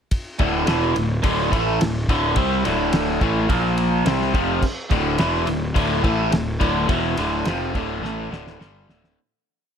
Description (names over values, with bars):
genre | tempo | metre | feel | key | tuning
classic rock | 106 BPM | 4/4 | straight | D minor | A4 = 443 Hz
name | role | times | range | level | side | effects
cloth-damped thuddy drum kit | drums | 0.1-9.2 s | crash cymbal, kick drum, ride cymbal, snare drum | -25 LUFS | equal | none
overdriven electric guitar | riff | 0.4-9.2 s | D2 to C4 | -24 LUFS | left 12 dB | none
overdriven semi-hollow guitar | riff | 0.4-9.2 s | D2 to C4 | -24 LUFS | right 9 dB | phaser
fuzz picked electric bass | bass | 0.4-9.2 s | D1 to C2 | -26 LUFS | equal | overdrive
room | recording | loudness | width
light reverb, small room ambience | none | -18 LUFS | side -8 dB against mid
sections
0.1-9.2 riff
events
fade-out 6.9-9.2; drum fill 8.0-9.2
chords
0.1 D5; 3.5 Bb5; 4.1 Dm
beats
| 0.11 0.67 1.24 1.80 | 2.36 2.93 3.49 4.05 | 4.62 5.19 5.75 6.32 | 6.89 7.46 8.04 8.61